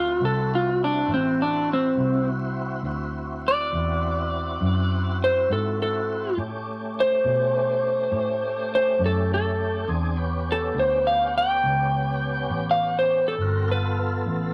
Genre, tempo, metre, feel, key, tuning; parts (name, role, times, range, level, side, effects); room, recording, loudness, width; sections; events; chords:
slow blues; 68 BPM (dotted quarters); 12/8; straight; D mixolydian; A4 = 440 Hz
electric slide guitar; melody; 0.0-14.0 s; C4 to G5; -25 LUFS; equal
overdriven tonewheel organ; sustained chords; 0.0-14.5 s; A3 to Bb4; -33 LUFS; equal; chorus vibrato, slow rotary speaker
vintage muted fingered electric bass; bass; 0.0-14.5 s; G1 to B2; -30 LUFS; equal
light reverb; vinyl crackle; -24 LUFS; mono
0.0-14.5 A section
electric slide guitar solo 0.0-14.5
0.0 D7; 6.4 A7; 13.4 G7